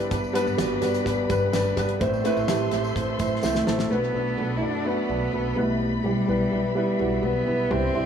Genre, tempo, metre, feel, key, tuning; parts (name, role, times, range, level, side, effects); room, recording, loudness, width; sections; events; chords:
piano-driven pop; 126 BPM; 4/4; straight; A4 = 440 Hz
dark upright piano; accompaniment; 0.0-8.1 s; G2 to D5; -24 LUFS; right 1 dB; tape echo
warm studio string section; sustained chords; 0.0-8.1 s; G4 to C6; -34 LUFS; left 1 dB
upright bass; bass; 0.0-8.1 s; G1 to C2; -30 LUFS; equal
tambourine; percussion; 0.0-3.8 s; -44 LUFS; left 7 dB
damped 70s drum kit; drums; 0.1-3.9 s; hi-hat, kick drum, snare drum; -31 LUFS; left 1 dB; tape echo
dark cello; melody; 3.4-8.1 s; G3 to E4; -27 LUFS; equal; tape echo
moderate plate reverb, RT60 1.5 s; echo-heavy mix; -22 LUFS; side -8 dB against mid
0.0-3.9 A section; 3.9-8.1 B section
drum fill 3.4-3.9
0.0 G; 2.0 Am; 3.9 Bm7; 5.6 Em/B